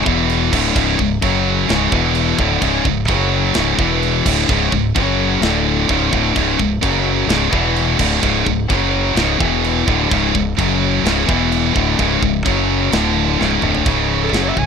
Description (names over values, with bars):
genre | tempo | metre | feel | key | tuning
heavy metal | 128 BPM | 4/4 | straight | C# phrygian | A4 = 439 Hz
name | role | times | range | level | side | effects
distorted electric guitar | riff | 0.0-14.7 s | C#2 to F#3 | -19 LUFS | left 11 dB | distortion
heavy high-gain guitar | riff | 0.0-14.7 s | C#2 to F#3 | -18 LUFS | right 17 dB | distortion
growling fingered electric bass | bass | 0.0-14.7 s | C#1 to F#1 | -21 LUFS | right 1 dB | overdrive
tight metal drum kit | drums | 0.1-14.7 s | crash cymbal, kick drum, snare drum, toms | -22 LUFS | right 1 dB | none
bright clarinet | melody | 14.2-14.7 s | G#4 to G#5 | -22 LUFS | right 1 dB | none
room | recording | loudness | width
studio reverb | rough home demo mix | -14 LUFS | side -6 dB against mid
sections
0.0-13.9 A section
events
half time 0.0-13.9; drum fill 13.4-13.9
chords
0.1 E5; 0.5 C#5; 1.2 F#5; 1.7 C#5; 1.9 E5; 2.4 C#5; 3.1 F#5; 3.6 C#5; 3.8 E5; 4.3 C#5; 5.0 F#5; 5.4 D5; 5.9 C#5; 6.8 F#5; 7.3 C#5; 7.5 E5; 8.0 C#5; 8.7 F#5; 9.2 C#5; 9.4 E5; 9.9 C#5; 10.6 F#5; 11.0 C#5; 11.3 E5; 11.8 C#5; 12.5 F#5; 12.9 D5; 13.4 C#5